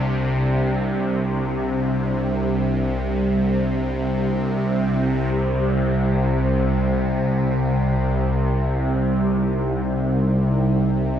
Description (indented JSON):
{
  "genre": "dark ambient drone",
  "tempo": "free time",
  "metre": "none",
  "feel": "none",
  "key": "C minor",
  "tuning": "A4 = 440 Hz",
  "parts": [
    { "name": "sweeping resonant pad", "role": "sustained chords", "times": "0.0-11.2 s", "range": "C3 to Eb4", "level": "-30 LUFS", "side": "equal", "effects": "none" },
    { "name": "bowed-like drone", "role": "drone", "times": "0.0-11.2 s", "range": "C2 to C3", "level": "-19 LUFS", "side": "equal", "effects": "built-in reverb, phaser" }
  ],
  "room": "wet huge ambient reverb, RT60 9.2 s",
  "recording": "dark, warm production",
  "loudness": "-19 LUFS",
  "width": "side -9 dB against mid",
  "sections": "0.0-5.3 A section; 5.3-11.2 B section",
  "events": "none",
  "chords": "0.0 C5; 5.3 Cm"
}